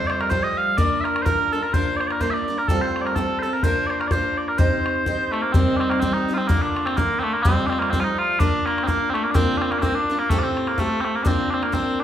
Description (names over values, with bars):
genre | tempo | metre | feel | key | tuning
celtic folk, Celtic polka | 126 BPM | 2/4 | swing 56% on 8ths | unclear | A4 = 440 Hz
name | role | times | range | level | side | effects
mellow small bagpipes | melody | 0.0-12.0 s | A3 to F5 | -22 LUFS | equal | none
picked steel-string acoustic guitar | accompaniment | 0.0-12.0 s | F2 to C5 | -25 LUFS | equal | none
bodhran | percussion | 0.1-11.9 s | none | -23 LUFS | left 1 dB | none
room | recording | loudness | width
wet large studio reverb, RT60 0.8 s | band playing live in one room | -19 LUFS | side -10 dB against mid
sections
0.0-5.5 A section; 5.5-12.0 A section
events
none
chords
0.0 Fadd9; 0.8 Bb; 2.7 Fadd9/A; 3.6 Bb; 4.6 Cm; 6.5 Bb/D; 7.4 Fadd9; 8.4 Bb; 10.3 Fadd9/A; 11.3 Bb